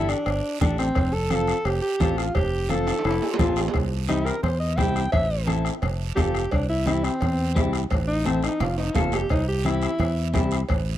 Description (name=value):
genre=latin, cumbia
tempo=173 BPM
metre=4/4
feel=straight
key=C major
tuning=A4 = 440 Hz
part: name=breathy alto saxophone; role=melody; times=0.0-10.3 s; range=C4 to G5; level=-27 LUFS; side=equal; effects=none
part: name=electric guitar at the edge of break-up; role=accompaniment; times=0.0-10.6 s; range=C4 to A4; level=-30 LUFS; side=left 3 dB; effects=none
part: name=fingered electric bass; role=bass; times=0.0-11.0 s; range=F1 to E2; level=-26 LUFS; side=equal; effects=none
part: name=bombo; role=percussion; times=0.1-10.9 s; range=none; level=-28 LUFS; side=left 2 dB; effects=none
part: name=guiro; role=percussion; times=0.1-11.0 s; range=none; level=-40 LUFS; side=right 16 dB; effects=none
part: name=congas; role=percussion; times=0.3-10.9 s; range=none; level=-31 LUFS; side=right 3 dB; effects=none
part: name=cowbell and timbales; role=percussion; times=0.3-10.9 s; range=none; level=-33 LUFS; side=right 8 dB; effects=none
part: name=warm clarinet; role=second line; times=3.0-3.7 s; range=E4 to F4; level=-29 LUFS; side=left 6 dB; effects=none
room=small room ambience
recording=dry, close 1970s-style studio recording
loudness=-21 LUFS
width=side -12 dB against mid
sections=0.0-3.7 A section; 3.7-11.0 B section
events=drum fill 2.9-3.7, 8.6-9.3; alto saxophone solo 3.7-11.0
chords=0.0 Gsus2; 1.0 F; 3.7 C; 5.1 Am; 5.8 F; 6.5 C; 7.9 Am; 8.6 F; 9.3 C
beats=0.27 0.61 | 0.96 1.31 1.66 2.00 | 2.35 2.70 3.04 3.39 | 3.74 4.09 4.44 4.78 | 5.13 5.48 5.83 6.17 | 6.52 6.87 7.22 7.57 | 7.91 8.26 8.61 8.96 | 9.30 9.65 10.00 10.35 | 10.69